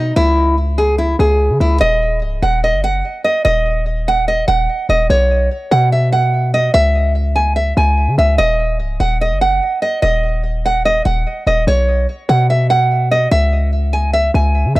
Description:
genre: hip hop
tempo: 146 BPM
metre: 4/4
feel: half-time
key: Eb phrygian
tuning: A4 = 444 Hz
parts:
  - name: nylon-string guitar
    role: melody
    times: 0.0-14.8 s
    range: Eb4 to Ab5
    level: -15 LUFS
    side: right 1 dB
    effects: tape echo
  - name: hard-hitting 808-style bass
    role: bass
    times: 0.0-14.8 s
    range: Db1 to Db3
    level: -15 LUFS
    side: equal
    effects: none
room: small room ambience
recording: dry, gritty hardware recording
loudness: -12 LUFS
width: side -18 dB against mid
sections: 0.0-1.8 A section; 1.8-14.8 B section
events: none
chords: 0.2 Dbm; 1.8 Ebm; 5.1 Bsus2; 6.7 Dbm; 8.4 Ebm; 11.7 Bsus2; 13.3 Dbm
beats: | 0.17 0.58 0.99 1.40 | 1.81 2.22 2.63 3.04 | 3.45 3.86 4.28 4.69 | 5.10 5.51 5.92 6.33 | 6.74 7.15 7.56 7.97 | 8.38 8.80 9.21 9.62 | 10.03 10.44 10.85 11.26 | 11.67 12.08 12.49 12.90 | 13.32 13.73 14.14 14.55

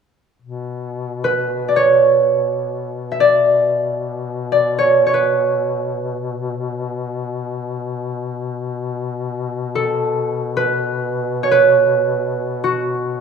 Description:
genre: caucasian folk, Caucasian lament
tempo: free time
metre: none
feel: none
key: B minor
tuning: A4 = 440 Hz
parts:
  - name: mellow duduk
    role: drone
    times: 0.4-13.2 s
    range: B2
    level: -25 LUFS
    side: left 6 dB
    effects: none
  - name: concert harp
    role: melody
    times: 1.2-13.2 s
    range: F#4 to E5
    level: -15 LUFS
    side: right 2 dB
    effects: none
room: wet recital hall reverb, RT60 1.6 s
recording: minimal, uncompressed stereo recording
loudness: -16 LUFS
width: side -6 dB against mid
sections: 0.4-13.2 A section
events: none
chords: none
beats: free time

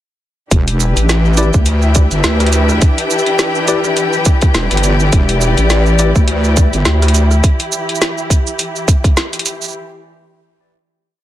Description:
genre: glitch hop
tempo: 104 BPM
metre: 4/4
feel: swing 56% on 16ths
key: E minor pentatonic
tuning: A4 = 440 Hz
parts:
  - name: muted studio string section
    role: sustained chords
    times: 0.5-9.7 s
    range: E3 to G4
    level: -20 LUFS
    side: left 1 dB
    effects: vintage 12-bit sampler grit, sidechain pumping
  - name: wobble bass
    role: bass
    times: 0.5-7.4 s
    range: E1 to D2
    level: -12 LUFS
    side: equal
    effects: chorus, tube saturation
  - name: drum and bass drum kit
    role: drums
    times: 0.5-9.7 s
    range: hi-hat, rim click, shaker, snare drum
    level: -18 LUFS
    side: right 1 dB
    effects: none
  - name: electronic kick drum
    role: drums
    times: 0.5-9.1 s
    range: none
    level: -11 LUFS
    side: equal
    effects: none
  - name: warm studio string section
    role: texture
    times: 0.5-7.4 s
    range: E4 to G5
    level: -20 LUFS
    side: left 3 dB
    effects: sidechain pumping
  - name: bright tine electric piano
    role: stabs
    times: 1.4-6.1 s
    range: E4 to D5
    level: -21 LUFS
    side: left 3 dB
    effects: medium stereo tremolo, sidechain pumping, tape echo
room: light reverb, digital ambience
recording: dense, heavily limited modern master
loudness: -11 LUFS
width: side -13 dB against mid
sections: 0.5-9.7 drop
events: drop 0.5-9.7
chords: 0.5 Em7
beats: | 0.51 1.09 1.67 2.24 | 2.82 3.40 3.97 4.55 | 5.13 5.70 6.28 6.86 | 7.43 8.01 8.59 9.17

